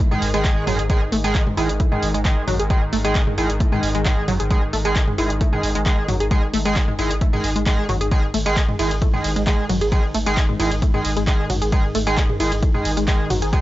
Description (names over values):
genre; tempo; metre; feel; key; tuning
driving peak-time techno; 133 BPM; 4/4; straight; unclear; A4 = 438 Hz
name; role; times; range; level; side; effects
tight sequenced synth; riff; 0.0-13.6 s; F#3 to G#4; -25 LUFS; equal; chorus, tube saturation, sidechain pumping, analog delay
analog drone; drone; 0.0-13.6 s; G#2 to D#3; -29 LUFS; left 1 dB; chorus, sidechain pumping
punchy analog drum machine; drums; 0.0-13.6 s; handclaps, hi-hat, ride cymbal, toms; -27 LUFS; equal; none
sync-sweep polysynth; stabs; 0.1-13.6 s; D#3 to G#4; -25 LUFS; right 2 dB; chorus, sidechain pumping, analog delay
warm sub bass; bass; 0.1-13.5 s; G#1; -26 LUFS; equal; sidechain pumping, low-pass filter
electronic kick drum; drums; 0.4-13.6 s; none; -19 LUFS; equal; none
room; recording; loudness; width
little or no reverb; dry, gritty hardware recording, nothing above 7.7 kHz; -17 LUFS; side -16 dB against mid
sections
0.0-13.6 A section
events
none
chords
0.0 G#5